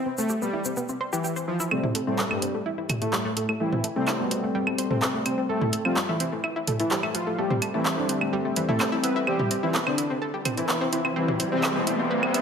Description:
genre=melodic techno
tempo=127 BPM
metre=4/4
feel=straight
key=A minor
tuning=A4 = 440 Hz
part: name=analog pluck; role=arpeggios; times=0.0-12.4 s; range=E3 to E5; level=-30 LUFS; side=equal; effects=chorus, dub echo
part: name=soft supersaw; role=melody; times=0.2-11.9 s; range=G2 to B4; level=-28 LUFS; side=equal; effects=low-pass filter, ping-pong delay
part: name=tube shaker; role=percussion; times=0.2-1.7 s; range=none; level=-35 LUFS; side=equal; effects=none
part: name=analog synth brass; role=stabs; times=1.7-12.4 s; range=E3 to C4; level=-29 LUFS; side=left 1 dB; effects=chorus, dub echo
part: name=techno drum kit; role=drums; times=1.7-12.4 s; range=claves, handclaps, hi-hat, toms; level=-28 LUFS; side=right 1 dB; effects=none
part: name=riser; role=sound effects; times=10.2-12.4 s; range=none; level=-32 LUFS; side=equal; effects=none
room=moderate lush hall reverb, RT60 2.0 s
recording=high-pass filter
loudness=-23 LUFS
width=side -7 dB against mid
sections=0.0-1.7 A section; 1.7-12.4 B section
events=filter sweep on synth arpeggio sound 0.0-1.7; build-up 1.7-12.4; filter sweep on supersaw synth 1.7-12.4; riser 10.2-12.4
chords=0.0 C; 1.7 Am7; 9.3 C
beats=0.30 0.77 1.24 | 1.71 2.19 2.66 3.13 | 3.60 4.08 4.55 5.02 | 5.49 5.97 6.44 6.91 | 7.38 7.86 8.33 8.80 | 9.27 9.74 10.22 10.69 | 11.16 11.63 12.11

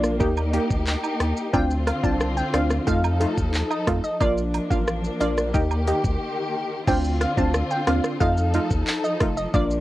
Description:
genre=dancehall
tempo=90 BPM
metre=4/4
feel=straight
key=D phrygian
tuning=A4 = 440 Hz
part: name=punchy chord stab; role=accompaniment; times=0.0-9.8 s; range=A3 to G4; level=-25 LUFS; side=right 1 dB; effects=chorus
part: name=warm studio string section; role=sustained chords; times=0.0-9.8 s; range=D3 to A4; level=-28 LUFS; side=left 1 dB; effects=sidechain pumping
part: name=round analog bass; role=bass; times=0.0-9.8 s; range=F1 to F2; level=-25 LUFS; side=equal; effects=none
part: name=island pop drum kit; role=drums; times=0.0-9.8 s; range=crash cymbal, handclaps, hi-hat, kick drum, rim click, shaker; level=-25 LUFS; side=equal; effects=none
part: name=woodblock and cabasa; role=percussion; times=0.4-6.0 s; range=none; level=-31 LUFS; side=right 8 dB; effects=none
part: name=glassy wavetable pluck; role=melody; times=1.5-9.6 s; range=D5 to A5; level=-28 LUFS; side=equal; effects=chorus, cassette tape, tape echo
room=light reverb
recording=home recording on cassette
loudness=-20 LUFS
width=side -15 dB against mid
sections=0.0-6.9 A section; 6.9-9.8 B section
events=break 6.2-6.9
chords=0.2 Eb; 1.5 Dm7; 2.9 F7; 4.2 Bb; 5.5 Eb; 6.9 Dm7; 8.2 F7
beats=0.21 0.87 | 1.54 2.21 2.87 3.54 | 4.21 4.87 5.54 6.21 | 6.87 7.54 8.21 8.87 | 9.54

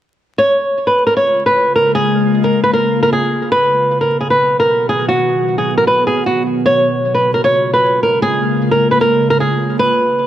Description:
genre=hip hop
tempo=153 BPM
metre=4/4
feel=half-time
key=Bb phrygian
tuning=A4 = 440 Hz
part: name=flamenco guitar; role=melody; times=0.4-10.3 s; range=F#4 to Db5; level=-12 LUFS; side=equal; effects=low-pass filter, digital delay
part: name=ethereal airy pad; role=sustained chords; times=1.3-10.3 s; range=B2 to F#4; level=-18 LUFS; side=equal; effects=ensemble chorus, built-in reverb, phaser
room=moderate recital hall reverb, RT60 1.4 s, small room ambience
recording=vinyl crackle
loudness=-12 LUFS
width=side -12 dB against mid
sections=0.4-10.3 A section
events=none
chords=0.4 Bbm7; 3.5 B; 6.7 Bbm7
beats=| 0.38 0.77 1.17 1.56 | 1.95 2.34 2.73 3.13 | 3.52 3.91 4.30 4.70 | 5.09 5.48 5.87 6.26 | 6.66 7.05 7.44 7.83 | 8.22 8.62 9.01 9.40 | 9.79 10.19

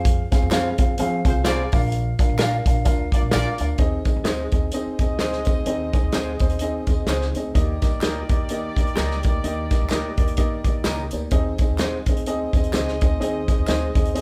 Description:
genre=uptempo 1960s-style soul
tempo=127 BPM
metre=4/4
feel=swing 58% on 8ths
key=unclear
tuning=A4 = 442 Hz
part: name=dark upright piano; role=accompaniment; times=0.0-14.2 s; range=Bb3 to F5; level=-29 LUFS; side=equal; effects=none
part: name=upright bass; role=bass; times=0.0-14.2 s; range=Bb1 to F3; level=-29 LUFS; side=equal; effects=none
part: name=warm soul drum kit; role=drums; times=0.0-14.2 s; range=hi-hat, kick drum, snare drum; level=-24 LUFS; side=equal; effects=none
part: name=tambourine and handclaps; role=percussion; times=0.3-14.2 s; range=none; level=-40 LUFS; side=equal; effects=none
part: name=electric guitar through a small old amp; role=stabs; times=0.5-13.9 s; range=G4 to F5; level=-31 LUFS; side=equal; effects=none
part: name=warm horn section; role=second line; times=1.3-14.2 s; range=F4 to Eb5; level=-34 LUFS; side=equal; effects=none
room=moderate large studio reverb, RT60 0.9 s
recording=band playing live in one room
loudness=-22 LUFS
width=mono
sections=0.0-3.8 A section; 3.8-14.2 B section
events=none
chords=0.0 Fm; 1.7 Bb; 3.8 Ab; 7.6 Eb; 11.3 Ab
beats=| 0.05 0.51 0.98 1.45 | 1.92 2.38 2.85 3.32 | 3.79 4.26 4.73 5.20 | 5.67 6.14 6.61 7.08 | 7.55 8.03 8.50 8.97 | 9.44 9.91 10.38 10.85 | 11.32 11.80 12.27 12.74 | 13.21 13.68 14.15

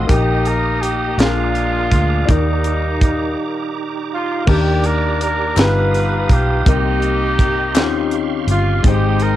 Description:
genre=slow gospel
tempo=55 BPM (dotted quarters)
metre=6/8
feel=straight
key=Eb major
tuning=A4 = 438 Hz
part: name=clear horn section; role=melody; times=0.0-9.4 s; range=G3 to B4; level=-20 LUFS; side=right 1 dB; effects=none
part: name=clear baby grand piano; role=accompaniment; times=0.0-9.4 s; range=G2 to A#5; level=-22 LUFS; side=left 8 dB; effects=cassette tape
part: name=bright tonewheel organ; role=sustained chords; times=0.0-9.4 s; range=Ab3 to Eb6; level=-26 LUFS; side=right 8 dB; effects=fast rotary speaker, chorus vibrato, cassette tape
part: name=vintage muted fingered electric bass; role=bass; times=0.0-9.4 s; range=G1 to Eb2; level=-19 LUFS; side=right 1 dB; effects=none
part: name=tight funk drum kit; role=drums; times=0.1-9.4 s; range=crash cymbal, hi-hat, kick drum, snare drum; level=-16 LUFS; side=right 1 dB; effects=cassette tape
part: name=group handclap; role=percussion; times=5.6-8.1 s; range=none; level=-25 LUFS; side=left 10 dB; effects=none
room=light reverb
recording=home recording on cassette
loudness=-14 LUFS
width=side -13 dB against mid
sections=0.0-4.5 A section; 4.5-9.4 A section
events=break 3.4-4.5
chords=0.1 Eb/Bb; 1.2 Bb7; 2.3 Ebmaj7; 5.6 G7alt; 6.7 Cm7; 7.8 Eb13; 8.8 Abmaj7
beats=| 0.09 1.19 | 2.29 3.38 | 4.48 5.57 | 6.66 7.75 | 8.84

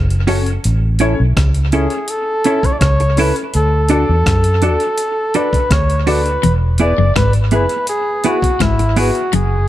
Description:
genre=roots reggae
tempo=83 BPM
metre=4/4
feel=straight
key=E mixolydian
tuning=A4 = 440 Hz
part: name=vintage muted fingered electric bass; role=bass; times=0.0-9.7 s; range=E1 to F#2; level=-15 LUFS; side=equal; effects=none
part: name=breakbeat sampler-style drum kit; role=drums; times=0.1-9.5 s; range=hi-hat, kick drum, rim click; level=-19 LUFS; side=equal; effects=dub echo
part: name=clean electric guitar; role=accompaniment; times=0.3-9.1 s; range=B3 to A4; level=-21 LUFS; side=right 4 dB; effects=tape echo
part: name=dark upright piano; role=stabs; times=0.3-9.1 s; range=B3 to D5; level=-23 LUFS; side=left 5 dB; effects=none
part: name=warm flugelhorn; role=melody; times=1.7-9.7 s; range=E4 to D5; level=-18 LUFS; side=equal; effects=tape echo
part: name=clean electric guitar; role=riff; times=6.4-9.5 s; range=E2 to G#2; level=-19 LUFS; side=left 5 dB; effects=none
room=little or no reverb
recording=faint mains hum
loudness=-12 LUFS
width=side -14 dB against mid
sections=0.0-9.7 A section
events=none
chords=0.0 F#m; 0.6 A; 3.5 D; 6.4 E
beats=| 0.64 1.36 2.09 2.81 | 3.54 4.26 4.99 5.71 | 6.43 7.16 7.88 8.61 | 9.33

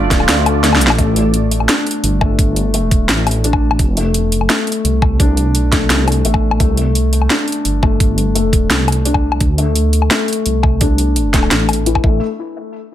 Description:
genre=half-time drum and bass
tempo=171 BPM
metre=4/4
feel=half-time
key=unclear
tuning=A4 = 440 Hz
part: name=deep dark ambient pad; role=sustained chords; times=0.0-1.0 s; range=A3 to D5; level=-22 LUFS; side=right 4 dB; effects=chorus, built-in reverb, sidechain pumping
part: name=felt-muted upright piano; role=arpeggios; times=0.0-12.2 s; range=E3 to D4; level=-18 LUFS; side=left 3 dB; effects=low-pass filter, tape echo
part: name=dark detuned saw bass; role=bass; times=0.0-12.2 s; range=F1 to D2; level=-16 LUFS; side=right 1 dB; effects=tube saturation
part: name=drum and bass drum kit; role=drums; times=0.1-12.0 s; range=hi-hat, shaker, snare drum, woodblock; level=-17 LUFS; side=left 1 dB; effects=overdrive
part: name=electronic kick drum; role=drums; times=0.1-12.1 s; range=none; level=-15 LUFS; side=right 1 dB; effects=none
room=digital ambience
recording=none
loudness=-12 LUFS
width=side -12 dB against mid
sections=1.0-12.2 A section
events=kick drops out 0.6-1.0; drum fill 0.6-1.0; filter sweep on detuned saw bass 1.0-12.2; filter sweep on felt piano 1.0-12.2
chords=0.0 Dm; 1.0 Gsus2; 3.8 F; 6.6 C5; 9.4 D5; 12.0 N.C.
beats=0.28 0.64 | 0.99 1.34 1.69 2.04 | 2.39 2.74 3.09 3.44 | 3.79 4.14 4.49 4.84 | 5.20 5.55 5.90 6.25 | 6.60 6.95 7.30 7.65 | 8.00 8.35 8.71 9.06 | 9.41 9.76 10.11 10.46 | 10.81 11.16 11.51 11.86 | 12.21

